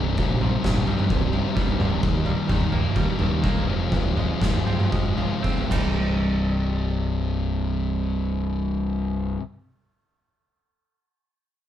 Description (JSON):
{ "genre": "quiet-loud alternative rock", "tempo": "110-130 BPM", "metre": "4/4", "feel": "straight", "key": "C minor", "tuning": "A4 = 439 Hz", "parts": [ { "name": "semi-hollow electric guitar", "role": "arpeggios", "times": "0.0-9.4 s", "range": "C2 to Eb4", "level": "-30 LUFS", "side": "right 6 dB", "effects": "none" }, { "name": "sludgy distorted guitar", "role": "riff", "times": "0.0-9.4 s", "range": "C2 to F4", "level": "-27 LUFS", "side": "left 5 dB", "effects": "overdrive" }, { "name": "growling picked electric bass", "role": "bass", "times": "0.0-9.4 s", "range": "C1 to Eb2", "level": "-26 LUFS", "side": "equal", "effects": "overdrive" }, { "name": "oversized low-tuned drum kit", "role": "drums", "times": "0.2-5.8 s", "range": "crash cymbal, kick drum, snare drum, toms", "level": "-24 LUFS", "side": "equal", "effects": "none" } ], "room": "light reverb", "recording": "band playing live in one room", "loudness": "-21 LUFS", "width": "side -11 dB against mid", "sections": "0.0-6.0 A section; 6.0-10.4 B section", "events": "slowing down 2.0-6.0; drum fill 5.7", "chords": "0.0 Cm; 2.0 Eb; 3.7 Fm7; 5.7 Cm" }